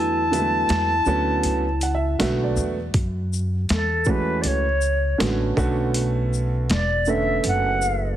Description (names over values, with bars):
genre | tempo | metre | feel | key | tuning
hip hop, jazz-hop | 80 BPM | 4/4 | swing 63% on 16ths | F# minor | A4 = 440 Hz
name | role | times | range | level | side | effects
silver concert flute | melody | 0.0-8.2 s | A4 to A5 | -23 LUFS | equal | none
vibraphone with medium hard mallets | second line | 0.0-2.1 s | E4 | -29 LUFS | left 3 dB | none
warm grand piano | accompaniment | 0.0-8.2 s | D3 to F#5 | -25 LUFS | right 3 dB | none
upright bass | bass | 0.0-8.2 s | E1 to F#2 | -24 LUFS | equal | none
boom bap sampler-style drum kit | drums | 0.3-8.0 s | hi-hat, kick drum, shaker, snare drum | -26 LUFS | equal | overdrive
room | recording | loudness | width
light reverb, small room ambience | heavily compressed radio sound, multiband compression | -19 LUFS | side -11 dB against mid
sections
0.0-2.9 A section; 2.9-8.2 B section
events
break 0.0-2.9; grand piano fill 1.4-2.9; flute solo 2.9-8.2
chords
0.0 E7sus4; 2.9 F#m9; 5.6 Bm9